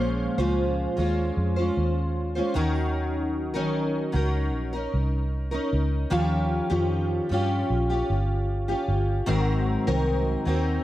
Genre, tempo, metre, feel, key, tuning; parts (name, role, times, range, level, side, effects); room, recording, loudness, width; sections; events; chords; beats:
indie pop; 76 BPM; 4/4; straight; A4 = 444 Hz
picked steel-string acoustic guitar; accompaniment; 0.0-10.8 s; Ab2 to C5; -25 LUFS; left 1 dB; analog chorus, vibrato effect
vintage muted fingered electric bass; bass; 0.0-10.8 s; G1 to G2; -26 LUFS; equal
light reverb, small room ambience; dark, warm production; -23 LUFS; side -14 dB against mid
0.0-10.8 A section
0.0 Bbm9; 2.6 Ebm7; 6.1 Eb9; 9.3 Ab9
0.59 1.38 2.17 | 2.96 3.75 4.54 5.33 | 6.12 6.91 7.70 8.49 | 9.28 10.07